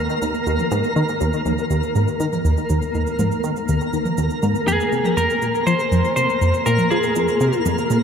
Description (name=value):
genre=ambient, sequencer-driven space music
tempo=121 BPM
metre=4/4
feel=straight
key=unclear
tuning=A4 = 440 Hz
part: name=tight sequenced synth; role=riff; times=0.0-8.0 s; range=Eb2 to F3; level=-21 LUFS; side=equal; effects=chorus, ping-pong delay
part: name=twinkling granular texture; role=texture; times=0.0-8.0 s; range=Bb3 to Bb4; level=-23 LUFS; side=equal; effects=built-in reverb
part: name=electronic shaker and toms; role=percussion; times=0.1-8.0 s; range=none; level=-28 LUFS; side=right 1 dB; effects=overdrive
part: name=lightly driven lead guitar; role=melody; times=4.7-7.6 s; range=Ab4 to C5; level=-19 LUFS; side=left 1 dB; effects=ping-pong delay
room=wet huge ambient reverb, RT60 8.6 s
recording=none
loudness=-17 LUFS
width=side -7 dB against mid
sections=0.0-8.0 A section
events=none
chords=0.0 Eb5; 4.7 Fm